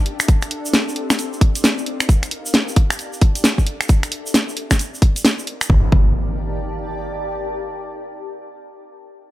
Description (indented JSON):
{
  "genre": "UK garage, two-step garage",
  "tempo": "133 BPM",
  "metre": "4/4",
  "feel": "swing 62% on 16ths",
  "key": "G minor",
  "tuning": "A4 = 441 Hz",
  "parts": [
    { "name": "granular cloud pad", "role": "texture", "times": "0.0-7.5 s", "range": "C4 to A5", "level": "-29 LUFS", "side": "left 2 dB", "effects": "built-in reverb, sidechain pumping" },
    { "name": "garage drum kit", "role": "drums", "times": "0.1-5.7 s", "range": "finger snaps, hi-hat, snare drum", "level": "-18 LUFS", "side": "equal", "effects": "small room reverb" },
    { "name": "tube shaker", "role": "percussion", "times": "0.2-5.7 s", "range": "none", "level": "-29 LUFS", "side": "right 2 dB", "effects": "none" },
    { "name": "electronic kick drum", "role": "drums", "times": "0.3-6.0 s", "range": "none", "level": "-14 LUFS", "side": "equal", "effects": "small room reverb" },
    { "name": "organ-like FM bass", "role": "bass", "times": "5.7-6.1 s", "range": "G1", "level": "-17 LUFS", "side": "equal", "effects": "none" },
    { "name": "impact", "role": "sound effects", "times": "5.7-7.5 s", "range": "none", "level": "-23 LUFS", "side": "equal", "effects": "none" }
  ],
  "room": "digital ambience",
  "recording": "none",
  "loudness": "-16 LUFS",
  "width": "side -15 dB against mid",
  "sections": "0.0-5.7 A section; 5.7-7.5 B section",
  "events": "fade-out on ambient pad 0.0-5.7",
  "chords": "0.3 C5; 1.2 Eb5; 2.1 Gm7; 2.8 D5; 3.9 C5; 4.8 Eb5; 5.7 G5",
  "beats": "| 0.28 0.74 1.19 1.64 | 2.09 2.54 2.99 3.44 | 3.89 4.34 4.80 5.25 | 5.70 6.15 6.60 7.05"
}